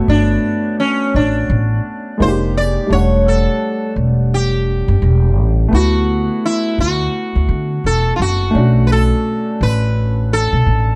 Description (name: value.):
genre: hip hop, jazz-hop.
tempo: 85 BPM.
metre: 4/4.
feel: swing 62% on 16ths.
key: B minor.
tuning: A4 = 440 Hz.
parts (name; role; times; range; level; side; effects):
sitar; melody; 0.0-11.0 s; C#4 to D5; -22 LUFS; equal; none.
clear upright piano; accompaniment; 0.0-11.0 s; G3 to F#5; -22 LUFS; equal; none.
upright bass; bass; 0.1-10.9 s; E1 to D3; -17 LUFS; equal; none.
room: light reverb.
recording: dark, warm production.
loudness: -16 LUFS.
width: mono.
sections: 0.0-11.0 A section.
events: none.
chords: 0.0 Gmaj9#11; 2.2 Fm11; 2.9 Em11; 5.7 D6; 8.5 Bm7.